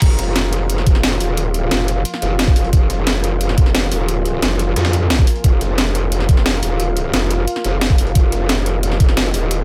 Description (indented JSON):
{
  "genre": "dark technical drum and bass",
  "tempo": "177 BPM",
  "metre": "4/4",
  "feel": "straight",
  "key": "F minor",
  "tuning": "A4 = 442 Hz",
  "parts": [
    { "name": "deep dark ambient pad", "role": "sustained chords", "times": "0.0-9.6 s", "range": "F4 to Ab5", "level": "-28 LUFS", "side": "equal", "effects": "chorus, built-in reverb, sidechain pumping" },
    { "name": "growl bass", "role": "bass", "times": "0.0-9.6 s", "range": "Eb1 to F2", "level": "-20 LUFS", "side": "equal", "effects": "chorus, overdrive, sidechain pumping" },
    { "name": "breakbeat sampler-style drum kit", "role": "drums", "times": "0.0-9.6 s", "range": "hi-hat, snare drum", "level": "-32 LUFS", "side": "equal", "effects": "high-pass filter on hats, high-pass filter on snare, high-pass filter on room" },
    { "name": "drum and bass drum kit", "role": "drums", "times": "0.0-9.6 s", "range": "crash cymbal, hi-hat, snare drum", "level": "-22 LUFS", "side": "equal", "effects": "overdrive" },
    { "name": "electronic kick drum", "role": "drums", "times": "0.0-9.1 s", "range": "none", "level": "-15 LUFS", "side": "equal", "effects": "overdrive" }
  ],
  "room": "little or no reverb",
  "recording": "none",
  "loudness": "-16 LUFS",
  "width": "mono",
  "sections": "0.0-9.6 A section",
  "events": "none",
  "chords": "0.0 F5",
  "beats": "| 0.02 0.36 0.70 1.03 | 1.37 1.71 2.05 2.39 | 2.73 3.07 3.41 3.75 | 4.09 4.42 4.76 5.10 | 5.44 5.78 6.12 6.46 | 6.80 7.14 7.47 7.81 | 8.15 8.49 8.83 9.17 | 9.51"
}